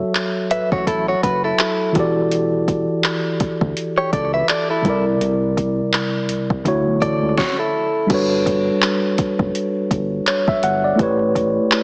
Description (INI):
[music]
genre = contemporary R&B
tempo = 83 BPM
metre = 4/4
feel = swing 58% on 16ths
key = unclear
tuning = A4 = 440 Hz
[part]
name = mellow tine electric piano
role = accompaniment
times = 0.0-11.8 s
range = C3 to F#5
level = -22 LUFS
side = equal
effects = none
[part]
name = round analog bass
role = bass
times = 0.0-11.6 s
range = E1 to D2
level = -30 LUFS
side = equal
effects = none
[part]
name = smooth R&B drum kit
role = drums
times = 0.1-11.8 s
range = crash cymbal, handclaps, hi-hat, kick drum, snare drum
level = -24 LUFS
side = equal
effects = none
[part]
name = direct-recorded clean electric guitar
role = arpeggios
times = 0.5-8.1 s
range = E4 to E5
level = -22 LUFS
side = equal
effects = digital delay
[sound]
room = moderate concert hall reverb, RT60 2.0 s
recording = heavily compressed radio sound, small speaker sound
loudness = -19 LUFS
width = mono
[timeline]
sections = 0.0-8.1 A section; 8.1-11.8 B section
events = none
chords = 0.0 F#m7; 2.0 Em11; 4.8 C7; 6.7 Dmaj7; 8.1 Gmaj9#11; 11.0 A9